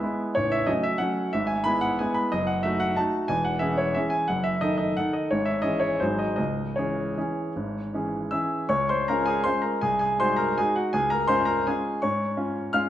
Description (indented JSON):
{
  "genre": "classical, piano waltz",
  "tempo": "151-193 BPM",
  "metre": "3/4",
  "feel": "rubato",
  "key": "C# minor, Db major from 8.7 s",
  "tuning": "A4 = 441 Hz",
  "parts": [
    { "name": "bright concert grand piano", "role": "solo", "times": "0.0-12.9 s", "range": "A0 to F6", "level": "-23 LUFS", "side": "equal", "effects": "none" }
  ],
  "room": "moderate recital hall reverb, RT60 1.5 s",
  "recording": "none",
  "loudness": "-23 LUFS",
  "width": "side -12 dB against mid",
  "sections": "0.0-8.7 A section; 8.7-12.9 B section",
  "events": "none",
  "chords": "0.4 F#m/A; 1.3 E/G#; 2.3 D#dim/F#; 3.3 C#m/E; 4.3 D#dim/F#; 5.3 C#m/G#; 6.0 G#7; 6.4 C#m; 8.7 Db; 9.8 Ab7/C; 10.9 Db"
}